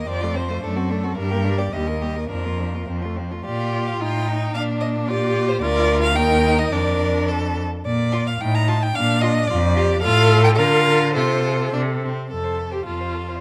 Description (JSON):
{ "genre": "quick classical-period movement for string quartet", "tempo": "108 BPM", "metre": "2/4", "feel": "rubato", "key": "Bb major, F major from 10.0 s", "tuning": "A4 = 440 Hz", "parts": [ { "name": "warm violin", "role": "melody", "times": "0.0-13.4 s", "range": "A4 to Bb5", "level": "-27 LUFS", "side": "equal", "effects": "none" }, { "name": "clear violin", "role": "second line", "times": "0.0-13.4 s", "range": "C4 to C5", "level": "-29 LUFS", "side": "equal", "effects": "none" }, { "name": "warm viola", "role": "accompaniment", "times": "0.0-13.4 s", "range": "F3 to Bb4", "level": "-27 LUFS", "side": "equal", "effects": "none" }, { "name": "clear cello", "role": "bass", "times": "0.1-13.3 s", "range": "D2 to D3", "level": "-24 LUFS", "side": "equal", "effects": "none" } ], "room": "light reverb", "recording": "close, detailed microphones", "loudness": "-20 LUFS", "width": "mono", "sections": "0.0-3.5 A section; 3.5-12.3 B section; 12.3-13.4 C section", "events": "none", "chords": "0.1 F; 0.6 D7/F#; 1.2 Gm; 1.7 Eb; 2.3 Bb/F; 2.9 F; 3.5 Bb; 4.0 F7/A; 4.6 Bb; 5.6 Bb/D; 6.2 Eb; 6.7 Bb/F; 7.9 Bb; 8.4 F7/A (rootless); 9.0 Bb; 10.0 F/A; 10.6 Bb/D; 11.2 F/C; 12.3 F" }